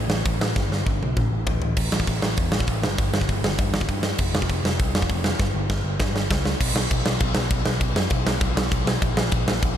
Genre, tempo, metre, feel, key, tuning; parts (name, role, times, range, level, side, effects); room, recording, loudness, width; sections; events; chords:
punk rock; 199 BPM; 4/4; straight; A4 = 441 Hz
overdriven picked electric bass; bass; 0.0-9.7 s; F1 to G2; -25 LUFS; equal
big rock drum kit; drums; 0.1-9.7 s; crash cymbal, hi-hat, kick drum, snare drum, toms; -22 LUFS; equal
little or no reverb; -20 LUFS; side -10 dB against mid
0.0-1.8 A section; 1.8-6.6 B section; 6.6-9.8 C section
drum fill 0.6-1.8, 5.4-6.6